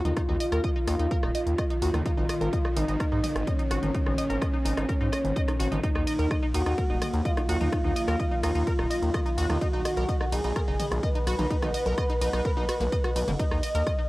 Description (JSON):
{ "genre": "melodic techno", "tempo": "127 BPM", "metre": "4/4", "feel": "straight", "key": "Eb minor", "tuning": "A4 = 435 Hz", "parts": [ { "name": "expressive synth lead", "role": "melody", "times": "0.0-14.1 s", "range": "Db4 to Eb5", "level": "-30 LUFS", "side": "equal", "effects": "chorus, sidechain pumping, cassette tape, analog delay" }, { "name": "gritty driven synth bass", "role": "bass", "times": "0.0-13.8 s", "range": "Eb1 to Ab2", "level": "-28 LUFS", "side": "equal", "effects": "sidechain pumping" }, { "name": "bowed-like drone", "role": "drone", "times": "0.5-13.4 s", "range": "Bb2 to Eb3", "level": "-41 LUFS", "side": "right 2 dB", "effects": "none" }, { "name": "tight sequenced synth", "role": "arpeggios", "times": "0.1-14.0 s", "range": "Bb3 to Eb5", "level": "-34 LUFS", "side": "equal", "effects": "chorus, phaser, cassette tape, sidechain pumping, analog delay" }, { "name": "techno drum kit", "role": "drums", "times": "0.1-14.0 s", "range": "hi-hat, ride cymbal, rim click, toms", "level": "-36 LUFS", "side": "equal", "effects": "none" }, { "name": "electronic kick drum", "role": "drums", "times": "0.2-14.0 s", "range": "none", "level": "-28 LUFS", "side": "equal", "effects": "none" }, { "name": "deep dark ambient pad", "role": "sustained chords", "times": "6.8-14.1 s", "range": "Gb3 to B5", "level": "-40 LUFS", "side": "equal", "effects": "chorus, built-in reverb, sidechain pumping" } ], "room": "light reverb", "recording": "home recording on cassette", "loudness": "-24 LUFS", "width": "side -19 dB against mid", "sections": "0.0-13.4 A section", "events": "drop 0.0-13.4", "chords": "0.0 Eb5; 2.1 Absus2; 5.8 Ebm; 9.6 B; 13.4 Ebm" }